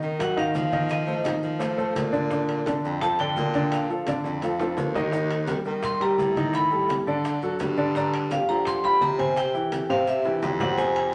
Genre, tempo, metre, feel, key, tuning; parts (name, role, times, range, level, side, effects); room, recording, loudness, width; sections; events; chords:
Afro-Cuban jazz; 170 BPM; 4/4; straight; Bb major, Eb major from 5.1 s; A4 = 440 Hz
warm grand piano; accompaniment; 0.0-11.1 s; C3 to D#5; -28 LUFS; equal
breathy baritone saxophone; bass; 0.0-11.1 s; Eb2 to F3; -33 LUFS; equal
bongos; percussion; 0.0-11.1 s; -41 LUFS; equal
congas; percussion; 0.0-11.1 s; -38 LUFS; equal
maracas; percussion; 0.0-11.1 s; -55 LUFS; equal
vibraphone with medium hard mallets; melody; 0.2-11.1 s; D5 to C6; -28 LUFS; equal
timbales; percussion; 0.2-11.1 s; -40 LUFS; equal
wet large studio reverb, RT60 1.0 s; -25 LUFS; mono
0.0-5.1 A section; 5.1-11.1 A section
vibraphone solo 0.0-11.1; drum fill 4.1-5.1, 10.1-10.8
0.0 Bmaj7 (rootless); 0.9 F6; 2.3 Bbmaj7; 5.1 Eb; 6.5 B7alt/A; 7.3 D; 8.0 G5; 9.4 C